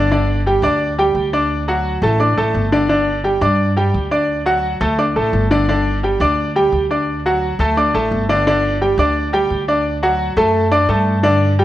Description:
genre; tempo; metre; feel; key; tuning
latin, salsa; 172 BPM; 4/4; straight; unclear; A4 = 441 Hz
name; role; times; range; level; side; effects
bright concert grand piano; accompaniment; 0.0-11.6 s; D3 to D6; -15 LUFS; equal; none
upright bass; bass; 0.0-11.6 s; G1 to G2; -20 LUFS; equal; none
room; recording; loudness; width
moderate large studio reverb, RT60 1.3 s; worn, warbling old tape, cassette tape, warbly pitch drift; -14 LUFS; side -13 dB against mid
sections
0.0-8.5 A section; 8.5-11.6 B section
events
none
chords
0.1 G5; 1.5 D; 2.9 G5; 4.3 D; 5.7 G5; 7.1 D; 8.5 G5; 9.8 D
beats
| 0.11 0.46 0.80 1.15 | 1.50 1.85 2.20 2.54 | 2.89 3.24 3.59 3.94 | 4.29 4.64 4.99 5.33 | 5.68 6.03 6.38 6.73 | 7.07 7.42 7.77 8.12 | 8.46 8.81 9.16 9.50 | 9.85 10.20 10.54 10.89 | 11.23 11.58

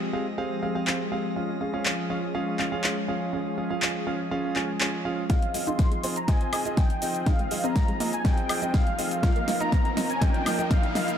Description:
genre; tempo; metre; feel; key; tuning
progressive house; 122 BPM; 4/4; straight; Ab major; A4 = 441 Hz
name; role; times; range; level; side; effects
lush unison pad; sustained chords; 0.0-11.2 s; F3 to Bb4; -32 LUFS; left 2 dB; chorus, sidechain pumping
warm concert grand piano; stabs; 0.0-11.2 s; Bb3 to Ab5; -31 LUFS; right 3 dB; sidechain pumping, tape echo
drifting glass-harmonics texture; texture; 0.0-5.3 s; Eb5 to Eb6; -44 LUFS; equal; chorus, built-in reverb, sidechain pumping
pop drum kit; drums; 0.9-11.2 s; handclaps, hi-hat, shaker, snare drum, woodblock; -30 LUFS; left 1 dB; overdrive
soft supersaw; melody; 5.3-11.2 s; F5 to C6; -30 LUFS; left 1 dB; vintage 12-bit sampler grit, low-pass filter, tape echo
analog pluck; arpeggios; 5.3-11.1 s; Ab3 to F4; -34 LUFS; equal; chorus, sidechain pumping, tape echo
electronic kick drum; drums; 5.3-10.8 s; none; -23 LUFS; equal; overdrive
riser; sound effects; 6.7-11.2 s; none; -37 LUFS; equal; none
room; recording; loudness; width
light reverb, digital ambience; dark, warm production; -24 LUFS; side -9 dB against mid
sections
0.0-5.3 A section; 5.3-11.2 B section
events
filter sweep on analog synth pad 0.0-5.3; build-up 5.3-11.2; drum fill 5.3-11.2; filter sweep on synth arpeggio sound 5.3-11.2; filter sweep on supersaw synth 5.3-11.2; riser 6.7-11.2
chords
0.0 Fmadd9; 1.4 Db; 5.3 Ab6; 9.2 Ebsus2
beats
0.38 0.87 | 1.36 1.85 2.35 2.84 | 3.33 3.82 4.31 4.81 | 5.30 5.79 6.28 6.77 | 7.26 7.76 8.25 8.74 | 9.23 9.72 10.22 10.71

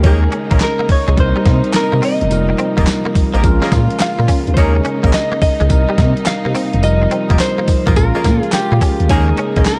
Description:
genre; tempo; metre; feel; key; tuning
R&B, new jack swing; 106 BPM; 4/4; swing 66% on 16ths; Bb dorian; A4 = 440 Hz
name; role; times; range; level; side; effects
direct-recorded clean electric guitar; melody; 0.0-9.8 s; G4 to F5; -22 LUFS; equal; subtle chorus, digital delay
bright tine electric piano; accompaniment; 0.0-9.8 s; G3 to Bb4; -23 LUFS; equal; none
dark studio string section; sustained chords; 0.0-9.8 s; C3 to F4; -26 LUFS; equal; none
mellow horn section; stabs; 0.0-9.7 s; Bb3 to Bb4; -27 LUFS; equal; none
smooth gliding synth bass; bass; 0.0-9.6 s; E1 to C3; -17 LUFS; equal; none
crisp 8-bit digital drum machine; drums; 0.0-9.8 s; handclaps, hi-hat, kick drum, snare drum, tambourine; -18 LUFS; equal; overdrive, vintage 12-bit sampler grit
direct-recorded clean electric guitar; riff; 0.2-9.6 s; F3 to Db4; -27 LUFS; equal; ensemble chorus
room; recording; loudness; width
digital ambience; none; -14 LUFS; mono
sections
0.0-9.8 A section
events
none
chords
0.0 Eb7sus4; 1.2 Cm7; 2.3 F9sus4; 3.4 Bbm7; 4.6 Eb7sus4; 5.7 Cm7; 6.8 F9sus4; 8.0 Bbm7; 9.1 Eb7sus4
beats
| 0.04 0.61 1.17 1.74 | 2.30 2.87 3.44 4.00 | 4.57 5.13 5.70 6.27 | 6.83 7.40 7.96 8.53 | 9.10 9.66

